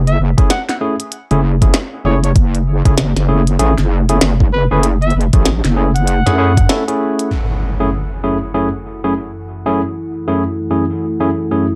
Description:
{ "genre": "glitch hop", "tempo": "97 BPM", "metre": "4/4", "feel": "swing 61% on 16ths", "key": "F# minor", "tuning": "A4 = 439 Hz", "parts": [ { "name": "wobble bass", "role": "bass", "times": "0.0-6.7 s", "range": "F#1 to F#2", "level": "-16 LUFS", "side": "equal", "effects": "chorus, overdrive" }, { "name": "mellow trumpet", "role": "melody", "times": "0.1-6.8 s", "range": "B4 to F#5", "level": "-26 LUFS", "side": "equal", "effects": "vintage 12-bit sampler grit, dub echo" }, { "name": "glitchy drum kit", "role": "drums", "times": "0.1-7.3 s", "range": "hi-hat, snare drum", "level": "-21 LUFS", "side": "equal", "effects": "low-pass filter on hats, low-pass filter on snare, low-pass filter on room" }, { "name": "barky tine electric piano", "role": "stabs", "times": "0.4-11.7 s", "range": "F#2 to A4", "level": "-20 LUFS", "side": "equal", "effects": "overdrive, sidechain pumping, dub echo" }, { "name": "electronic kick drum", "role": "drums", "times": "0.4-6.7 s", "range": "none", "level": "-14 LUFS", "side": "equal", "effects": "overdrive" }, { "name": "warm analog pad", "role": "sustained chords", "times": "7.3-11.8 s", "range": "F#2 to F#4", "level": "-29 LUFS", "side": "equal", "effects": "chorus, sidechain pumping" }, { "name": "impact", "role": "sound effects", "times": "7.3-9.8 s", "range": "none", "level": "-24 LUFS", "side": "equal", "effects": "none" }, { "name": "warbly tape-like pad", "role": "texture", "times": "7.3-11.8 s", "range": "E4 to F#5", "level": "-26 LUFS", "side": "equal", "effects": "chorus, built-in reverb, sidechain pumping" } ], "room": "moderate studio reverb, RT60 0.5 s", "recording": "dark, warm production", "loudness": "-15 LUFS", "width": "mono", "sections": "0.0-7.3 A section; 7.3-11.8 B section", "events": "break 6.7-7.3; band accent 6.7-7.0; impact 7.3-9.8; filter sweep on analog synth pad 7.3-11.8", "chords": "0.0 F#m7" }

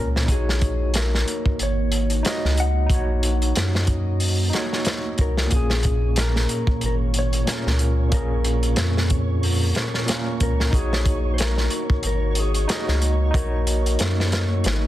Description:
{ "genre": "trip hop", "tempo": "92 BPM", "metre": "4/4", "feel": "swing 56% on 16ths", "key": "unclear", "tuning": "A4 = 440 Hz", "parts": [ { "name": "mellow electric guitar", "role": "melody", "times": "0.0-14.9 s", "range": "Ab4 to Gb5", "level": "-31 LUFS", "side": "left 5 dB", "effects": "vintage 12-bit sampler grit, tape echo" }, { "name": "overdriven tine electric piano", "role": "accompaniment", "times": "0.0-14.9 s", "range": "Bb2 to Eb5", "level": "-28 LUFS", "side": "right 1 dB", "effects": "tremolo, vintage 12-bit sampler grit" }, { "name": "deep dark ambient pad", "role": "sustained chords", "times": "0.0-14.9 s", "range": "Bb3 to Eb5", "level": "-32 LUFS", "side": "right 2 dB", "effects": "chorus, built-in reverb" }, { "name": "round analog bass", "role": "bass", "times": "0.0-14.9 s", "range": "Ab1 to Gb2", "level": "-22 LUFS", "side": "equal", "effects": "tube saturation" }, { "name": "crunchy breakbeat drum kit", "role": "drums", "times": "0.2-14.8 s", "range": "hi-hat, kick drum, snare drum", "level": "-24 LUFS", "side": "equal", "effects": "none" }, { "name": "flickering grainy texture", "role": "texture", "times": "6.1-14.9 s", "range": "Db5", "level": "-36 LUFS", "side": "right 5 dB", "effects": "built-in reverb" } ], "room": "studio reverb", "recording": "dense, heavily limited modern master", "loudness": "-19 LUFS", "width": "side -14 dB against mid", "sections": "0.0-14.9 A section", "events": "none", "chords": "0.3 Ebm7; 5.5 Bbm7; 10.7 Ebm7" }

